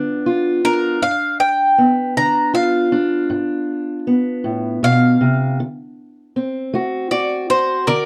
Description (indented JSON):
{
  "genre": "acoustic country blues, solo or duo",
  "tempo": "52 BPM (dotted quarters)",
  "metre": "12/8",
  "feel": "straight",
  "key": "G mixolydian",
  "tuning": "A4 = 442 Hz",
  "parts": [
    { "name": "bowl-back mandolin", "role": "melody", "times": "0.0-8.1 s", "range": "Bb4 to B5", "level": "-19 LUFS", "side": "equal", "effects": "slapback echo" },
    { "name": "fingerpicked steel-string acoustic guitar", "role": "accompaniment", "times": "0.0-8.1 s", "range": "G2 to F#4", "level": "-20 LUFS", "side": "equal", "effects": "none" }
  ],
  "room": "light reverb",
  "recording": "dry, close 1970s-style studio recording",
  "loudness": "-18 LUFS",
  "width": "mono",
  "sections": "0.0-8.1 A section",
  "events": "none",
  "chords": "0.0 G7; 5.6 D7"
}